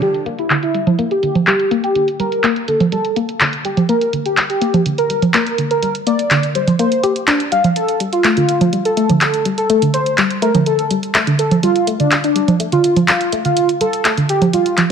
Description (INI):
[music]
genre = melodic techno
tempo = 124 BPM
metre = 4/4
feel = straight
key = G dorian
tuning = A4 = 440 Hz
[part]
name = wide unison lead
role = melody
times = 0.0-14.8 s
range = D4 to F5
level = -17 LUFS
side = equal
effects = analog chorus, digital delay
[part]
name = woody wave-folded pluck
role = arpeggios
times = 0.0-14.9 s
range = D3 to G4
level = -19 LUFS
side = left 2 dB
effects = chorus, ping-pong delay
[part]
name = punchy analog drum machine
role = drums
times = 0.0-14.9 s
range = congas, handclaps, hi-hat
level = -16 LUFS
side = right 2 dB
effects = low-pass filter on hats, low-pass filter on perc, low-pass filter on snare
[sound]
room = moderate scoring stage reverb, RT60 1.5 s, digital ambience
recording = none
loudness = -13 LUFS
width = side -7 dB against mid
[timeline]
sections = 0.0-14.9 A section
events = filter sweep on analog synth lead 0.0-14.9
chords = 0.0 Gm; 7.8 Dm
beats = | 0.02 0.50 0.99 1.47 | 1.95 2.44 2.92 3.41 | 3.89 4.37 4.86 5.34 | 5.83 6.31 6.79 7.28 | 7.76 8.24 8.73 9.21 | 9.70 10.18 10.66 11.15 | 11.63 12.12 12.60 13.08 | 13.57 14.05 14.54